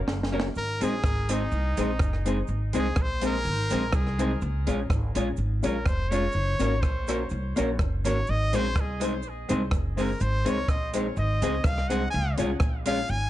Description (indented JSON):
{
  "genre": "ska",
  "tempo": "124 BPM",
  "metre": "4/4",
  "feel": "swing 54% on 8ths",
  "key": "Ab mixolydian",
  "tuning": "A4 = 440 Hz",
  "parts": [
    { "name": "upright bass", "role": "bass", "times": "0.0-13.3 s", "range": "F1 to Db2", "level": "-28 LUFS", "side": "equal", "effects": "none" },
    { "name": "vintage hollow-body jazz guitar", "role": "accompaniment", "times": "0.1-13.0 s", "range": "Ab3 to Bb4", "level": "-31 LUFS", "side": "right 3 dB", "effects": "none" },
    { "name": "dark upright piano", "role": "stabs", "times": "0.1-13.0 s", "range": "C4 to Db5", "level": "-32 LUFS", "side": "left 6 dB", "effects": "analog delay, plate reverb" },
    { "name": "compact cocktail drum kit", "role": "drums", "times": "0.1-13.0 s", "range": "hi-hat, kick drum, rim click, snare drum", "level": "-27 LUFS", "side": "equal", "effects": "none" },
    { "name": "bright trumpet", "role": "melody", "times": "0.6-13.3 s", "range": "Eb4 to Ab5", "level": "-32 LUFS", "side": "equal", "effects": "analog delay, plate reverb" },
    { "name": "cabasa", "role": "percussion", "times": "0.6-13.2 s", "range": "none", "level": "-49 LUFS", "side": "right 15 dB", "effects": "none" }
  ],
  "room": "light reverb",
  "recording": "nothing above 10.8 kHz",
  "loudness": "-24 LUFS",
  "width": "side -14 dB against mid",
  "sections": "0.6-13.3 A section",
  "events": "drum fill 0.1-0.6; trumpet solo 0.6-13.3",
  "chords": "0.0 Gb; 0.6 Ab; 4.4 Db; 6.3 Gb; 8.3 Ab; 12.1 Db"
}